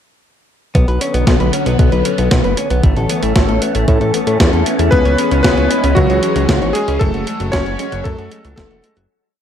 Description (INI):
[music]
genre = italo disco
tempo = 115 BPM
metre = 4/4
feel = straight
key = B dorian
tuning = A4 = 441 Hz
[part]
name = phased string machine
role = sustained chords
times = 0.7-9.1 s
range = D3 to C#4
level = -19 LUFS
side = left 1 dB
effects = ensemble chorus, phaser
[part]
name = direct-recorded clean electric guitar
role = arpeggios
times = 0.7-9.1 s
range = F#3 to C#5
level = -22 LUFS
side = left 3 dB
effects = spring reverb, ping-pong delay
[part]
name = fat analog bass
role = bass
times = 0.8-9.1 s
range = E1 to A2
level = -17 LUFS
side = equal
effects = none
[part]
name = clean 12-bit digital drum machine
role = drums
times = 0.8-9.1 s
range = hi-hat, snare drum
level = -20 LUFS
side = right 1 dB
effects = overdrive, gated reverb
[part]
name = electronic kick drum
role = drums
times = 0.8-8.7 s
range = none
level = -14 LUFS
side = equal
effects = overdrive
[part]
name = bright electric grand piano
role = melody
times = 4.9-8.9 s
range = F#3 to C#5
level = -18 LUFS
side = left 1 dB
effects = ping-pong delay
[sound]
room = digital ambience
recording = none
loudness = -12 LUFS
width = side -9 dB against mid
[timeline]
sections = 0.7-9.1 verse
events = fade-out 6.3-9.1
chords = 0.7 Bm; 2.8 A; 4.9 C#m; 7.0 F#m